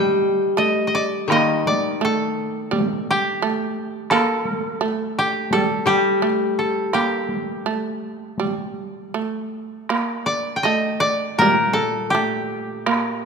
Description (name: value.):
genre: japanese traditional, Japanese chamber music.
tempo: 83 BPM.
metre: 4/4.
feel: uneven beats, rubato.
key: G hirajoshi.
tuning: A4 = 440 Hz.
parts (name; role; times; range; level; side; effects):
koto; melody; 0.0-13.3 s; G4 to G5; -21 LUFS; equal; none.
shamisen; second line; 0.0-13.3 s; G3 to Bb3; -25 LUFS; right 5 dB; none.
koto; accompaniment; 0.0-13.3 s; Bb2 to A4; -23 LUFS; left 3 dB; none.
solo taiko drums; percussion; 1.3-13.0 s; none; -27 LUFS; equal; none.
room: moderate concert hall reverb, RT60 2.5 s.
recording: minimal, uncompressed stereo recording.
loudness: -19 LUFS.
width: side -5 dB against mid.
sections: 0.0-9.9 A section; 9.9-13.3 B section.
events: none.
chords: none.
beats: 0.58 | 1.30 2.02 2.72 3.42 | 4.11 4.81 5.52 6.24 | 6.94 7.66 8.39 9.14 | 9.90 10.64 11.40 12.13 | 12.86.